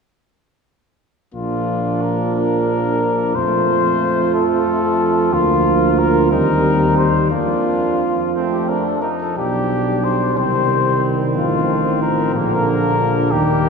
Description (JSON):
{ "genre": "classical, brass quintet", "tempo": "60 BPM (dotted quarters)", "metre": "6/8", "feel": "rubato", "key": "Bb major", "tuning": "A4 = 438 Hz", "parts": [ { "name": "mellow trumpet", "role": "melody", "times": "1.3-13.7 s", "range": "F4 to C5", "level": "-20 LUFS", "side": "left 4 dB", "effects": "none" }, { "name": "warm trumpet", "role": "second line", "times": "1.3-13.7 s", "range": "Bb3 to F4", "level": "-23 LUFS", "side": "right 4 dB", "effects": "none" }, { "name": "clear French horn", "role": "accompaniment", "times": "1.3-13.7 s", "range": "F3 to C4", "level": "-24 LUFS", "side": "equal", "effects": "none" }, { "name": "warm euphonium", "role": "accompaniment", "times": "1.3-13.7 s", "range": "D3 to G3", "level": "-23 LUFS", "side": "right 3 dB", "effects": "none" }, { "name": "mellow tuba", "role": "bass", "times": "1.3-13.7 s", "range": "A1 to F2", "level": "-20 LUFS", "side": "right 1 dB", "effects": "none" } ], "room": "wet church reverb, RT60 2.7 s", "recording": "heard from further back in the room", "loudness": "-15 LUFS", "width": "side -5 dB against mid", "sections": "1.3-13.7 A section", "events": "none", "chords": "1.3 Bb; 3.4 F; 5.3 Bb/D; 6.3 Cm7/Eb; 7.3 Bb/F; 8.3 F; 9.4 G7/B; 10.4 Cm; 11.4 F7/A; 12.4 Bb" }